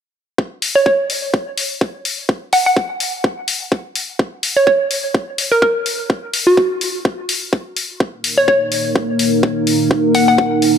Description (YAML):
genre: bass house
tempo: 126 BPM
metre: 4/4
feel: swing 56% on 16ths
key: Eb minor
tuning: A4 = 439 Hz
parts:
  - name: electronic kick drum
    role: drums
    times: 0.4-10.5 s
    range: none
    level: -16 LUFS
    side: equal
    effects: high-pass filter on kick, small room ambience
  - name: electronic hi-hat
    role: drums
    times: 0.6-10.7 s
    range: none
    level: -20 LUFS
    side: left 4 dB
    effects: small room ambience
  - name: hollow square pluck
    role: melody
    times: 0.8-10.3 s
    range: Gb4 to Gb5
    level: -16 LUFS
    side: equal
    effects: chorus, vintage 12-bit sampler grit, dub echo
  - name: dark analog pad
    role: sustained chords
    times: 8.0-10.8 s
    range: Bb3 to Bb4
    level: -15 LUFS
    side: right 1 dB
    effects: chorus, sidechain pumping
room: light reverb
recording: none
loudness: -14 LUFS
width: side -8 dB against mid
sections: 0.4-10.8 A section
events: none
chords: 0.4 Eb5